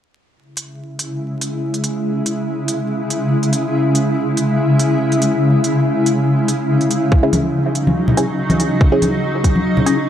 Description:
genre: deep dubstep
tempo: 142 BPM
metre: 4/4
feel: swing 54% on 16ths, half-time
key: C# minor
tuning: A4 = 441 Hz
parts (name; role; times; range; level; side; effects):
- granular cloud pad; sustained chords; 1.1-10.1 s; C#3 to E4; -16 LUFS; equal; built-in reverb
- electronic hi-hat; drums; 0.6-10.0 s; none; -25 LUFS; right 2 dB; none
- electronic kick drum; drums; 7.1-9.5 s; none; -14 LUFS; equal; none
- filtered dub chord stab; stabs; 7.2-10.0 s; C#4 to G#4; -20 LUFS; left 1 dB; phaser, dub echo
- congas; percussion; 7.3-9.8 s; none; -19 LUFS; left 1 dB; none
room: moderate echo chamber reverb, RT60 1.9 s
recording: vinyl crackle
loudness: -14 LUFS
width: side -10 dB against mid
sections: 0.4-10.1 A section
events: none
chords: 0.4 C#m

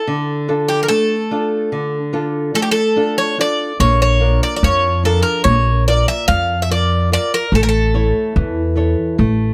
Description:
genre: greek folk, Greek bouzouki band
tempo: 145 BPM (eighths)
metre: 9/8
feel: straight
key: unclear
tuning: A4 = 440 Hz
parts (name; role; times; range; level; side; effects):
- Greek bouzouki; melody; 0.0-9.5 s; G4 to F5; -20 LUFS; equal; none
- nylon-string guitar; accompaniment; 0.1-9.5 s; D3 to D5; -22 LUFS; equal; none
- upright bass; bass; 3.8-9.5 s; A1 to F2; -18 LUFS; equal; none
room: light reverb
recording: close, detailed microphones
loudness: -16 LUFS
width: mono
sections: 0.0-9.5 A section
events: none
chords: 0.1 Dm; 3.8 Bb; 7.5 A

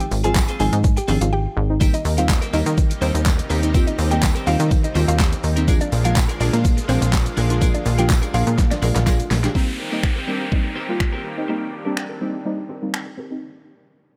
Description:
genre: dance-pop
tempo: 124 BPM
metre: 4/4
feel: straight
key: Eb major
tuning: A4 = 441 Hz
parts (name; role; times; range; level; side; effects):
- mallet-like synth pluck; melody; 0.0-9.4 s; C4 to Ab5; -30 LUFS; equal; chorus, phaser, sidechain pumping, delay
- deep mellow chord stab; accompaniment; 0.0-13.4 s; Eb3 to G4; -28 LUFS; equal; chorus, low-pass filter
- twelve-string electric guitar; riff; 0.0-13.3 s; C4 to Bb4; -34 LUFS; equal; analog chorus, low-pass filter
- pop drum kit; drums; 0.0-13.1 s; finger snaps, handclaps, hi-hat, kick drum, shaker, snare drum; -22 LUFS; equal; overdrive
- plucky analog bass; bass; 0.1-9.5 s; Ab1 to Eb3; -22 LUFS; equal; sidechain pumping
- tambourine; percussion; 0.1-9.2 s; none; -39 LUFS; equal; none
- lush unison pad; sustained chords; 1.8-13.4 s; C3 to G4; -33 LUFS; equal; chorus, sidechain pumping, low-pass filter
- downlifter; sound effects; 9.6-13.4 s; none; -34 LUFS; equal; none
room: little or no reverb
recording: none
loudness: -20 LUFS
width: mono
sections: 0.0-9.6 A section; 9.6-13.4 B section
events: drop 0.0-9.6; break 1.3-1.8; drum fill 8.6-9.6; filter sweep 9.6-13.4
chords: 0.0 Ab6; 1.8 Eb6; 5.7 Bb7; 9.6 Eb6

